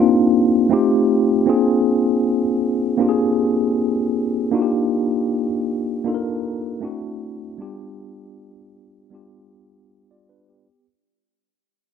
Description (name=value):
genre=soul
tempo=78 BPM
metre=4/4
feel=swing 54% on 16ths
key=unclear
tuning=A4 = 444 Hz
part: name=mellow tine electric piano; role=solo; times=0.0-10.9 s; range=G3 to D5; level=-17 LUFS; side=left 1 dB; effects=medium stereo tremolo
room=light reverb, digital ambience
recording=none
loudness=-17 LUFS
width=side -7 dB against mid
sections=0.0-10.7 A section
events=fade-out 0.0-10.7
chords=0.0 Cm7; 0.7 F7; 1.5 Bb7; 4.5 Ebmaj7; 6.8 D7; 7.6 G7